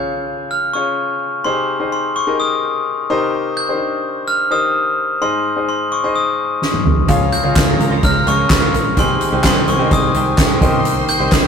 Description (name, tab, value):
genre	piano-driven pop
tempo	128 BPM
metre	4/4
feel	straight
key	unclear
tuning	A4 = 440 Hz
part	glockenspiel with hard plastic mallets	melody	0.0-11.5 s	C6 to G6	-18 LUFS	left 2 dB	none
part	clear grand piano	accompaniment	0.0-11.5 s	Ab2 to F5	-21 LUFS	left 3 dB	none
part	soft-mallet drum kit	drums	6.6-11.4 s	handclaps, hi-hat, kick drum, snare drum, toms	-15 LUFS	equal	none
part	rich symphonic violin section	second line	7.1-11.5 s	Ab3 to C6	-26 LUFS	equal	none
part	direct-recorded clean electric guitar	riff	7.1-11.5 s	C3 to G4	-22 LUFS	right 4 dB	harmonic tremolo
part	fingered electric bass	bass	7.1-11.5 s	Bb1 to Db2	-21 LUFS	right 2 dB	none
room	moderate studio reverb, RT60 0.5 s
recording	rough rehearsal-room recording, tube saturation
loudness	-14 LUFS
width	side -6 dB against mid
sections	0.0-11.5 A section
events	drum fill 6.6-7.1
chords	0.0 Db; 1.5 Abmaj7/C; 3.1 Cm7; 5.2 Ab; 7.1 Db; 9.0 Abmaj7/C; 10.6 Cm7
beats	0.04 0.51 0.98 | 1.45 1.92 2.39 2.86 | 3.33 3.80 4.27 4.74 | 5.21 5.68 6.15 6.62 | 7.09 7.56 8.03 8.50 | 8.97 9.44 9.91 10.38 | 10.85 11.32